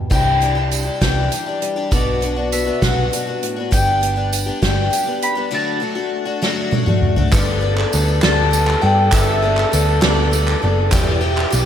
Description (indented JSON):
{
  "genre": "indie folk with a building arrangement",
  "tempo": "67 BPM (dotted quarters)",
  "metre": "6/8",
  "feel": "straight",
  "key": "G major",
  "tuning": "A4 = 439 Hz",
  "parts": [
    { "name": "fingerpicked acoustic archtop guitar", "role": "accompaniment", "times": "0.0-3.7 s", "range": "A2 to F#4", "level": "-26 LUFS", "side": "left 1 dB", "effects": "none" },
    { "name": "hollow-body short-scale picked electric bass", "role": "bass", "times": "0.0-11.7 s", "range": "E1 to G2", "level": "-19 LUFS", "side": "equal", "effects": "none" },
    { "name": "mandolin", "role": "melody", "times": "0.1-10.7 s", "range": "D5 to B5", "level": "-22 LUFS", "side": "left 2 dB", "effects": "slapback echo" },
    { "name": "picked twelve-string acoustic guitar", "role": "accompaniment", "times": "0.1-11.7 s", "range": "E2 to A4", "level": "-22 LUFS", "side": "left 5 dB", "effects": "slapback echo" },
    { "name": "soft-mallet drum kit", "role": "drums", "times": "0.1-11.7 s", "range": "crash cymbal, hi-hat, kick drum, ride cymbal, snare drum, toms", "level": "-20 LUFS", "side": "equal", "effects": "none" },
    { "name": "tambourine", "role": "percussion", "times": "0.1-11.7 s", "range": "none", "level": "-30 LUFS", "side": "right 7 dB", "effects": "none" },
    { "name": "mellow trombone", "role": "second line", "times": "7.3-11.7 s", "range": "G4 to A4", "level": "-23 LUFS", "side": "right 3 dB", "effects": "slapback echo" },
    { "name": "group handclap", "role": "percussion", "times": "7.3-11.5 s", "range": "none", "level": "-26 LUFS", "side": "right 3 dB", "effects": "none" }
  ],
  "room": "moderate lush hall reverb, RT60 2.1 s",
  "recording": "big arena sound",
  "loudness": "-15 LUFS",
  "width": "side -9 dB against mid",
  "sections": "0.1-7.3 A section; 7.3-11.7 B section",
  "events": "drum fill 6.4-7.3",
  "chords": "0.1 Cadd9; 1.9 Bm; 3.7 G; 5.5 D; 7.3 Gadd9; 10.9 Em"
}